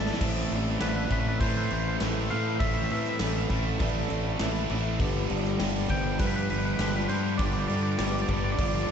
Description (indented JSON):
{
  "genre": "post-rock",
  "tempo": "100 BPM",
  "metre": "4/4",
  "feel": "straight",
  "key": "A minor",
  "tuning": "A4 = 440 Hz",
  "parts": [
    { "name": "twangy electric guitar", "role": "melody", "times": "0.0-8.9 s", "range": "B4 to A5", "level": "-34 LUFS", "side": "left 1 dB", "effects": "tape echo" },
    { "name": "icy glass pad", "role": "sustained chords", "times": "0.0-8.9 s", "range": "C4 to E6", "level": "-40 LUFS", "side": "right 1 dB", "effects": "chorus, built-in reverb" },
    { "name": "clean electric guitar", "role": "arpeggios", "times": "0.0-8.9 s", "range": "G2 to B4", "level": "-36 LUFS", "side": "left 4 dB", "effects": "spring reverb, tape echo" },
    { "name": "vibraphone with medium hard mallets", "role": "arpeggios", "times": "0.0-8.9 s", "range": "C4 to B5", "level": "-40 LUFS", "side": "right 5 dB", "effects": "tape echo" },
    { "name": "distorted electric guitar", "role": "riff", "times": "0.0-8.9 s", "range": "G2 to A3", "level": "-34 LUFS", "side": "right 10 dB", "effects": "distortion" },
    { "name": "overdriven semi-hollow guitar", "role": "riff", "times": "0.0-8.9 s", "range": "G2 to A4", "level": "-35 LUFS", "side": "left 10 dB", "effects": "none" },
    { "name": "fuzz fingered electric bass", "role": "bass", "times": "0.0-8.9 s", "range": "G1 to A2", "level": "-30 LUFS", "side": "equal", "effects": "overdrive" },
    { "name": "big rock drum kit", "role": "drums", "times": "0.1-8.9 s", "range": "crash cymbal, kick drum, snare drum", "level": "-31 LUFS", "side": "equal", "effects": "none" }
  ],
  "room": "moderate huge ambient reverb, RT60 8.4 s",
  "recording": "dreamy mix soaked in reverb, nothing above 7.9 kHz",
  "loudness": "-25 LUFS",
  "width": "side -7 dB against mid",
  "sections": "0.2-8.9 A section",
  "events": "drum fill 0.0",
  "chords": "0.2 Amadd9; 5.0 G7",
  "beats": "| 0.21 0.81 1.41 2.01 | 2.61 3.21 3.80 4.40 | 5.00 5.60 6.20 6.80 | 7.39 7.99 8.59"
}